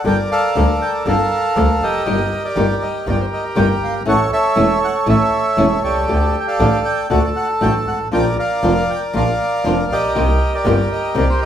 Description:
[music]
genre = tango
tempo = 119 BPM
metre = 4/4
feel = rubato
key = G minor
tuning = A4 = 440 Hz
[part]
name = bandoneon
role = melody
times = 0.0-11.5 s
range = G4 to G5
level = -17 LUFS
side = right 1 dB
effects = none
[part]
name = flamenco guitar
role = accompaniment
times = 0.0-11.2 s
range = C3 to A4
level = -20 LUFS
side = left 2 dB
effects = none
[part]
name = bright double bass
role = bass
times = 0.0-11.4 s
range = E1 to D2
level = -20 LUFS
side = equal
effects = none
[sound]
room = moderate large studio reverb, RT60 1.1 s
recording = band playing live in one room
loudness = -14 LUFS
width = side -10 dB against mid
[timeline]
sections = 0.0-11.5 A section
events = none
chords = 0.0 Gmadd9; 2.1 Eb/G; 4.1 A; 6.1 Dsus4; 7.1 D; 8.1 Bb; 10.2 Cm7

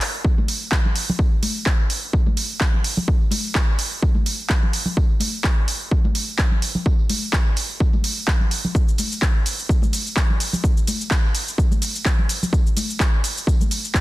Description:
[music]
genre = house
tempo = 127 BPM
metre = 4/4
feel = swing 55% on 16ths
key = none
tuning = none
[part]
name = house drum kit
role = drums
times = 0.0-14.0 s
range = handclaps, hi-hat, shaker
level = -24 LUFS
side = right 1 dB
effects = overdrive, sidechain pumping on hats, sidechain pumping on perc
[part]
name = tambourine and congas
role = percussion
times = 0.0-14.0 s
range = none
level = -28 LUFS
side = left 1 dB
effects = sidechain pumping on perc, low-pass filter on perc
[part]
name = electronic kick drum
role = drums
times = 0.2-14.0 s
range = none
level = -18 LUFS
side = equal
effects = overdrive
[sound]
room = little or no reverb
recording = dense, heavily limited modern master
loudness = -18 LUFS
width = side -18 dB against mid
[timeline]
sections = 0.0-14.0 A section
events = filter sweep on drum 0.0-14.0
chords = none

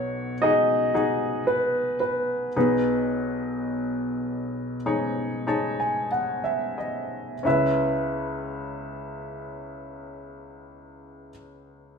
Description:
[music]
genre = pop ballad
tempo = 43-59 BPM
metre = 4/4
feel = straight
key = C# minor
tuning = A4 = 440 Hz
[part]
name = warm concert grand piano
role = melody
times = 0.0-11.3 s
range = B4 to E5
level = -26 LUFS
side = right 1 dB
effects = none
[part]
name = bright upright piano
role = accompaniment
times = 0.0-12.0 s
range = B1 to A5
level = -26 LUFS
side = left 1 dB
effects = none
[sound]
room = wet stone room reverb, RT60 1.0 s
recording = band playing live in one room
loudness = -23 LUFS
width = side -6 dB against mid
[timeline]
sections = 0.0-7.5 A section; 7.5-12.0 B section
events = slowing down 0.0-7.5; upright piano fill 4.9-7.5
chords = 0.0 B; 2.6 G#m/B; 7.5 C#m7

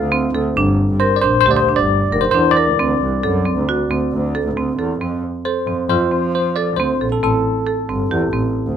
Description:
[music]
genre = contemporary instrumental, chamber music in an uneven meter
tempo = 135 BPM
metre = 5/4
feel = straight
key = unclear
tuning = A4 = 440 Hz
[part]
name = bell-like tine electric piano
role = melody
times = 0.0-8.8 s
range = A4 to F5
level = -18 LUFS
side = left 2 dB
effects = medium stereo tremolo
[part]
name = clear double bass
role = bass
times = 0.0-8.8 s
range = F1 to F3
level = -20 LUFS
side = left 1 dB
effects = none
[part]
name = marimba with hard mallets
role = arpeggios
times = 0.1-8.6 s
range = C4 to Bb4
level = -20 LUFS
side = right 4 dB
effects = none
[sound]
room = light reverb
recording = close, detailed microphones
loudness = -15 LUFS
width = side -8 dB against mid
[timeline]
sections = 0.0-5.0 A section; 5.0-8.8 B section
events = none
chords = 0.0 Dm7; 0.6 Gm; 2.8 D7; 5.0 F; 7.2 Am7

